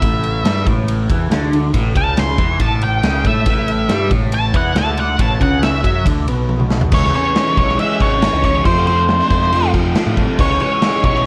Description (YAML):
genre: indie rock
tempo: 139 BPM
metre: 4/4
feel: straight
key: A major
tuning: A4 = 439 Hz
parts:
  - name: octave-fuzz lead guitar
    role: melody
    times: 0.0-11.2 s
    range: C5 to C6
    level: -21 LUFS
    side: equal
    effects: distortion
  - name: crunchy overdriven guitar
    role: riff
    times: 0.0-11.3 s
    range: A2 to C#4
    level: -22 LUFS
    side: equal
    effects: phaser
  - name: growling picked electric bass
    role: bass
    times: 0.0-11.2 s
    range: G#1 to A2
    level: -22 LUFS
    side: equal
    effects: overdrive
  - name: big rock drum kit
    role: drums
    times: 0.0-11.2 s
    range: crash cymbal, kick drum, ride cymbal, snare drum, toms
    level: -20 LUFS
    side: equal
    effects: none
room: light reverb, small room ambience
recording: worn, warbling old tape, cassette tape, warbly pitch drift, lossy compression artefacts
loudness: -16 LUFS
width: mono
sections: 0.0-6.9 A section; 6.9-11.3 B section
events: lead electric guitar solo 0.0-6.9; drum fill 6.5-6.9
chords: 0.0 A; 6.9 C#m; 8.7 F; 10.4 C#m